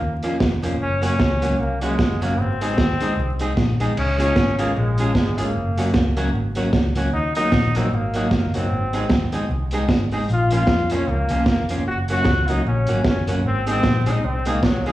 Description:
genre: ska.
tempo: 152 BPM.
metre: 4/4.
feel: swing 57% on 8ths.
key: Db major.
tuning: A4 = 439 Hz.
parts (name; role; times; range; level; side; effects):
brilliant trombone; melody; 0.0-14.9 s; F3 to Gb4; -24 LUFS; left 1 dB; slapback echo.
archtop guitar, miked and amplified; accompaniment; 0.0-14.9 s; F3 to Ab4; -25 LUFS; right 1 dB; tape echo, slapback echo.
vintage muted fingered electric bass; bass; 0.0-14.9 s; F1 to F2; -23 LUFS; equal; none.
crunchy breakbeat drum kit; drums; 0.2-14.9 s; crash cymbal, hi-hat, kick drum, snare drum; -22 LUFS; right 1 dB; slapback echo.
room: light reverb, small room ambience.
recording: live gig heard through the venue's PA, club reverb, vinyl crackle, studio reverb.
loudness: -18 LUFS.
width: side -15 dB against mid.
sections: 0.0-4.0 A section; 4.0-14.9 A section.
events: none.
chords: 0.0 Bbm; 0.8 Gb; 2.4 Ab; 4.0 Db; 5.5 Gb; 7.1 Ebm; 8.7 Ab; 10.3 Bbm; 11.9 Gb; 13.4 Ab.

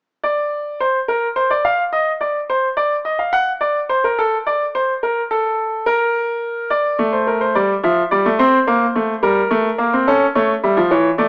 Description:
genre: classical, baroque-style two-part invention for grand piano.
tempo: 71 BPM (dotted quarters).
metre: 12/8.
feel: straight.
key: unclear.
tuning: A4 = 441 Hz.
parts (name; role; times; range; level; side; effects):
clear baby grand piano; solo; 0.2-11.3 s; E3 to F#5; -18 LUFS; equal; none.
room: moderate large studio reverb, RT60 1.4 s.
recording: small speaker sound.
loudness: -18 LUFS.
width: mono.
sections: 0.0-11.3 A section.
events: none.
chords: 0.0 N.C.; 6.7 D5; 8.4 C5; 10.1 A.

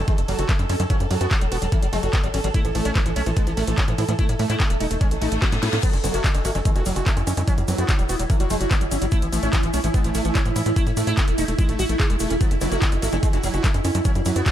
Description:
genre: psychedelic trance.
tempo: 146 BPM.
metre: 4/4.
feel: straight.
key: F# minor.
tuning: A4 = 440 Hz.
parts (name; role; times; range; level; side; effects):
vowel-sweep wobble bass; second line; 0.0-1.1, 6.0-7.8, 12.6-14.2 s; E3 to B3; -39 LUFS; right 4 dB; none.
swarming drone; sustained chords; 0.0-14.5 s; E4 to A4; -28 LUFS; right 2 dB; built-in reverb, sidechain pumping.
tight sequencer bass; bass; 0.0-14.4 s; E1 to A2; -24 LUFS; equal; none.
sitar; melody; 0.1-14.5 s; C#3 to G#4; -28 LUFS; equal; phaser, sidechain pumping, digital delay.
screaming distorted acid line; riff; 0.1-14.5 s; E3 to F#4; -30 LUFS; moving between left 6 dB and right 6 dB; distortion, chorus, auto-pan, sidechain pumping, digital delay.
drum and bass drum kit; drums; 0.1-14.5 s; crash cymbal, handclaps, hi-hat, ride cymbal, snare drum; -29 LUFS; equal; overdrive.
electronic kick drum; drums; 0.1-14.5 s; none; -20 LUFS; equal; overdrive.
reverse cymbal; sound effects; 5.2-5.8 s; none; -33 LUFS; left 3 dB; none.
tube shaker; percussion; 5.8-14.5 s; none; -36 LUFS; left 5 dB; none.
room: little or no reverb.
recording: dark, warm production.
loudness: -19 LUFS.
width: side -11 dB against mid.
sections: 0.0-14.5 A section.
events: reverse cymbal 5.2-5.8; drum fill 5.4-5.8.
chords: 0.0 F#5; 2.5 A5; 5.8 F#5; 9.1 A5; 12.4 F#5.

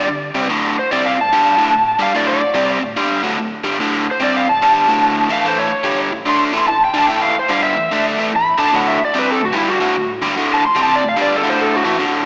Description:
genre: rock.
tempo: 146 BPM.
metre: 4/4.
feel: swing 64% on 8ths.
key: unclear.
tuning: A4 = 439 Hz.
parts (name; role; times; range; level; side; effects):
overdriven slide guitar; melody; 0.0-12.0 s; E4 to C6; -15 LUFS; equal; none.
overdriven electric guitar; riff; 0.0-12.3 s; D2 to D4; -16 LUFS; equal; none.
room: wet lush hall reverb, RT60 2.1 s.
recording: big arena sound, small speaker sound.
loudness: -13 LUFS.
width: side -39 dB against mid.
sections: 0.0-12.0 A section.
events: electric slide guitar solo 0.0-12.0.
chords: 0.0 G5; 0.5 D5; 5.4 A7(no3); 8.7 D5.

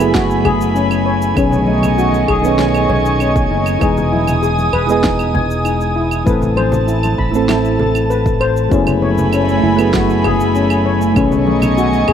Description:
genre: sunset chillout.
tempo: 98 BPM.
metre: 4/4.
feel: straight.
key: E major.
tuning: A4 = 440 Hz.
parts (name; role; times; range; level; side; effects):
soft electric-piano-like synth keys; accompaniment; 0.0-12.1 s; D#3 to D#5; -18 LUFS; moving between left 5 dB and right 6 dB; chorus, auto-pan, digital delay.
airy breathy pad; sustained chords; 0.0-12.1 s; A3 to D#6; -19 LUFS; right 1 dB; chorus.
steel pan; arpeggios; 0.0-12.1 s; C#4 to B5; -20 LUFS; left 5 dB; digital delay.
sustaining fretless electric bass; bass; 0.0-12.1 s; E1 to B1; -18 LUFS; equal; lush chorus.
electronic cabasa, snare drum and claves; drums; 0.0-12.1 s; none; -23 LUFS; right 2 dB; none.
electronic kick drum; drums; 0.1-12.1 s; none; -20 LUFS; equal; none.
congas; percussion; 0.5-12.1 s; none; -24 LUFS; equal; none.
room: moderate plate reverb, RT60 2.6 s.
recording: none.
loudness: -12 LUFS.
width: side -8 dB against mid.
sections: 0.0-12.1 A section.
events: none.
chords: 0.0 F#m11; 1.4 B13; 3.8 Emaj7; 6.3 Amadd9; 8.7 F#m11; 11.2 B13.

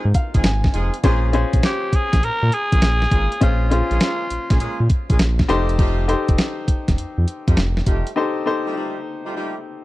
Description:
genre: R&B, new jack swing.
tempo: 101 BPM.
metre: 4/4.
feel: swing 67% on 16ths.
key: unclear.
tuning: A4 = 436 Hz.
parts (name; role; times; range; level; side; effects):
clear baby grand piano; accompaniment; 0.0-9.8 s; Db4 to Ab5; -24 LUFS; left 4 dB; none.
warm horn section; stabs; 0.0-9.6 s; G3 to Ab4; -30 LUFS; right 1 dB; none.
round analog bass; bass; 0.1-8.0 s; F1 to Bb2; -20 LUFS; equal; none.
clean 12-bit digital drum machine; drums; 0.1-8.2 s; hi-hat, kick drum, snare drum; -18 LUFS; equal; none.
raspy tenor saxophone; melody; 1.6-4.9 s; F4 to Bb4; -23 LUFS; equal; none.
room: small room ambience.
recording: dry, close 1970s-style studio recording.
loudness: -16 LUFS.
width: side -17 dB against mid.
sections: 0.0-9.8 A section.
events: grand piano fill 0.0-1.0; break 8.2-9.8.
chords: 0.0 Ab6; 1.0 Bbm7; 5.5 F9.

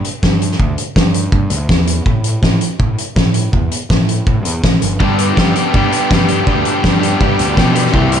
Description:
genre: indie rock.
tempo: 164 BPM.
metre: 4/4.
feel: straight.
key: G major.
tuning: A4 = 438 Hz.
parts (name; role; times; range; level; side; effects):
loose indie drum kit; drums; 0.0-8.2 s; hi-hat, kick drum, snare drum; -14 LUFS; equal; none.
fuzz picked electric bass; bass; 0.2-8.2 s; G1 to B2; -18 LUFS; equal; overdrive.
combo organ; sustained chords; 5.0-8.2 s; G4 to D6; -25 LUFS; right 2 dB; none.
overdriven electric guitar; riff; 5.0-8.2 s; G2 to G4; -14 LUFS; left 1 dB; slapback echo.
room: moderate lush hall reverb, RT60 1.7 s, studio ambience.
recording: big arena sound, nothing above 10.3 kHz.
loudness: -11 LUFS.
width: side -8 dB against mid.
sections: 0.0-8.2 A section.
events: none.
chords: 0.0 G5; 2.1 A5; 5.0 G.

